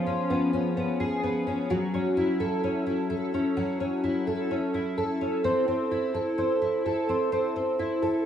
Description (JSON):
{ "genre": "dream pop", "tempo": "64 BPM", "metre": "4/4", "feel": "straight", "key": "A major", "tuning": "A4 = 441 Hz", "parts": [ { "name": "fingerpicked twelve-string acoustic guitar", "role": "solo", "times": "0.0-8.3 s", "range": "E#3 to A4", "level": "-25 LUFS", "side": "equal", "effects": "analog chorus, digital delay" } ], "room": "moderate plate reverb, RT60 3.5 s", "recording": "small room ambience", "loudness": "-25 LUFS", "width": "side -9 dB against mid", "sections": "0.0-1.7 A section; 1.7-8.3 B section", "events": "none", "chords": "0.0 C#7; 1.7 A6; 5.4 C6" }